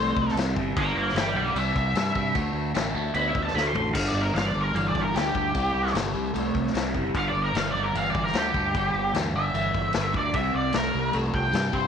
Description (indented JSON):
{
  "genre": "blues rock power trio and southern rock",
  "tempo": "150 BPM",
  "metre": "4/4",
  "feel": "straight",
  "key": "unclear",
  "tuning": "A4 = 440 Hz",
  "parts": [
    { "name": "octave-fuzz lead guitar", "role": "melody", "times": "0.0-11.9 s", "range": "G4 to C6", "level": "-27 LUFS", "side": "equal", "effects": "wah, distortion" },
    { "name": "crunchy overdriven guitar", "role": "riff", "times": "0.0-11.9 s", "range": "G2 to B3", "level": "-28 LUFS", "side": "right 1 dB", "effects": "phaser" },
    { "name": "fuzz fingered electric bass", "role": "bass", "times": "0.0-11.9 s", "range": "F#1 to G2", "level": "-31 LUFS", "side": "right 1 dB", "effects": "overdrive" },
    { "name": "vintage drum kit", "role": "drums", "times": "0.2-11.8 s", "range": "crash cymbal, kick drum, snare drum, toms", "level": "-30 LUFS", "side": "left 4 dB", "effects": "none" }
  ],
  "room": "light reverb",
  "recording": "1960s-style stereo",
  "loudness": "-23 LUFS",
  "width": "side -7 dB against mid",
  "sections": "0.0-4.0 A section; 4.0-11.9 A section",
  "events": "lead electric guitar solo 0.0-4.0, 4.0-11.9; drum fill 3.6-4.0",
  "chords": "0.0 C5; 0.8 G7; 1.6 C; 2.4 D5; 4.0 G5; 5.6 C5; 7.2 G5; 10.3 C5",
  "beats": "0.36 | 0.76 1.16 1.56 1.96 | 2.35 2.75 3.15 3.55 | 3.95 4.35 4.75 5.15 | 5.55 5.95 6.35 6.75 | 7.15 7.55 7.95 8.35 | 8.75 9.15 9.54 9.94 | 10.34 10.74 11.14 11.54"
}